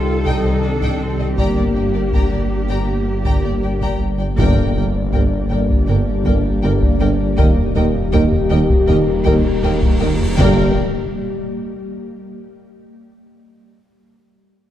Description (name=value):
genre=cinematic, hybrid orchestral and electronic film score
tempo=80 BPM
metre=4/4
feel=straight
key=G minor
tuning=A4 = 435 Hz
part: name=rich symphonic viola section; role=accompaniment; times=0.0-10.8 s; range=Bb3 to Bb4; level=-27 LUFS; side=equal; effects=none
part: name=ethereal airy pad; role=sustained chords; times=0.0-10.8 s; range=G3 to G5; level=-24 LUFS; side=left 1 dB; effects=ensemble chorus, built-in reverb
part: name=mellow French horn section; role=sustained chords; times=0.0-10.7 s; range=Eb3 to G4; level=-24 LUFS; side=left 3 dB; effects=none
part: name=rich symphonic cello section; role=bass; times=0.0-10.8 s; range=Eb2 to A4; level=-26 LUFS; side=right 1 dB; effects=none
part: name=swelling detuned saw bass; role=bass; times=0.0-10.8 s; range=Eb1 to C2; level=-22 LUFS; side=equal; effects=none
part: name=rich symphonic violin section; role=melody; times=0.3-10.8 s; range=C5 to Bb5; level=-32 LUFS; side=left 4 dB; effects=none
part: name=rich symphonic violin section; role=second line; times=0.3-10.8 s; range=Bb4 to G5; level=-30 LUFS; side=left 3 dB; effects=none
part: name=clear symphonic double bass section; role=bass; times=0.3-10.8 s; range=G1 to Eb2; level=-22 LUFS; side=right 2 dB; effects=none
part: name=taiko ensemble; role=drums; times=0.3-10.6 s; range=none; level=-20 LUFS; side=equal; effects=none
part: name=warm tuba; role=bass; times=4.4-10.7 s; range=G1 to Eb2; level=-23 LUFS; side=right 2 dB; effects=none
part: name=impact and cymbal swell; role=sound effects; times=4.4-13.4 s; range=none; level=-26 LUFS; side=equal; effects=none
room=moderate scoring stage reverb, RT60 1.6 s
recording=dark, warm production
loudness=-14 LUFS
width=side -12 dB against mid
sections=0.0-4.4 A section; 4.4-10.4 B section; 10.4-13.4 C section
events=band accent 4.4-5.1; impact 4.4-7.4, 10.4-13.4; cymbal swell 9.2-10.4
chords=0.0 Cm; 1.4 Gm; 7.4 Eb; 10.4 Gm